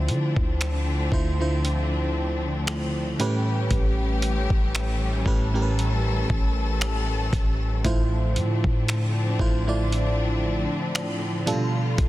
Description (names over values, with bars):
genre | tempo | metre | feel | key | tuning
contemporary R&B | 58 BPM | 4/4 | swing 54% on 16ths | D dorian | A4 = 436 Hz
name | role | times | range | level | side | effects
FM electric piano | accompaniment | 0.0-12.1 s | A2 to D5 | -26 LUFS | right 2 dB | chorus
rich studio string section | sustained chords | 0.0-12.1 s | D3 to A4 | -30 LUFS | left 3 dB | sidechain pumping
warm 808-style bass | bass | 0.0-12.1 s | A1 to D3 | -26 LUFS | equal | none
dusty soul sampler-style drum kit | drums | 0.1-12.1 s | finger snaps, hi-hat, kick drum | -26 LUFS | equal | soft clipping on snare
room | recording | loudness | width
light reverb, digital ambience | dense, heavily limited modern master | -22 LUFS | side -16 dB against mid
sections
0.0-12.1 A section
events
none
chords
0.0 Dm7; 3.2 A7; 7.8 Dm7/A; 11.5 G7/B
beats
0.60 1.64 2.67 | 3.71 4.74 5.78 6.81 | 7.84 8.88 9.91 10.95 | 11.98